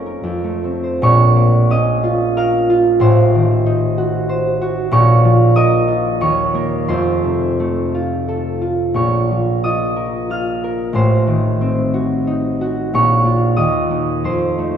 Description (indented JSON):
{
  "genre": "classical, solo harp piece",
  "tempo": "74-96 BPM",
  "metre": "3/4",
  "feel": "rubato",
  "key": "Bb minor",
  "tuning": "A4 = 440 Hz",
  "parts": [
    { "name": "concert harp", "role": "solo", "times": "0.0-14.8 s", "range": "F1 to F6", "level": "-13 LUFS", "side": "equal", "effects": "none" }
  ],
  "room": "wet church reverb, RT60 3.4 s",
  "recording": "recorded in a church or concert hall",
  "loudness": "-13 LUFS",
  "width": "side -8 dB against mid",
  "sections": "0.0-1.0 A section; 1.0-14.8 B section",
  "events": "none",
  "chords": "0.3 F; 1.0 Bbm; 3.0 Adim7; 4.9 Bbm; 6.2 Eb5; 6.9 F; 9.0 Bbm; 11.0 Adim7; 12.9 Bbm; 13.6 Eb5; 14.2 F7"
}